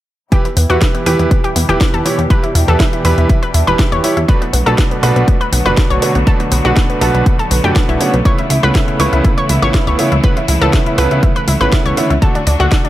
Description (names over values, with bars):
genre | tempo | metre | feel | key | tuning
progressive house | 121 BPM | 4/4 | straight | E dorian | A4 = 440 Hz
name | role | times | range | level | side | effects
bright symphonic string section | sustained chords | 0.3-12.9 s | A2 to G4 | -21 LUFS | equal | sidechain pumping, low-pass filter
analog pluck | arpeggios | 0.3-12.9 s | B3 to C#5 | -18 LUFS | left 1 dB | chorus, cassette tape, sidechain pumping, tape echo
bright grand piano | stabs | 0.3-12.9 s | B2 to C#5 | -17 LUFS | right 2 dB | sidechain pumping, tape echo
electronic kick drum | drums | 0.3-12.8 s | none | -13 LUFS | equal | small room ambience
house drum kit | drums | 0.3-12.9 s | hi-hat, snare drum | -22 LUFS | left 1 dB | overdrive, sidechain pumping on hats, small room ambience
plucky analog bass | bass | 0.6-12.7 s | E1 to E2 | -14 LUFS | equal | sidechain pumping
room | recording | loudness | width
little or no reverb | none | -10 LUFS | side -14 dB against mid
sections
0.3-12.9 A section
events
filter sweep on string section 0.3-12.9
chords
0.3 Em; 4.3 Bm7; 8.3 Aadd9; 12.2 D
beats
| 0.32 0.81 1.31 1.81 | 2.30 2.80 3.29 3.79 | 4.29 4.78 5.28 5.77 | 6.27 6.77 7.26 7.76 | 8.25 8.75 9.24 9.74 | 10.24 10.73 11.23 11.72 | 12.22 12.72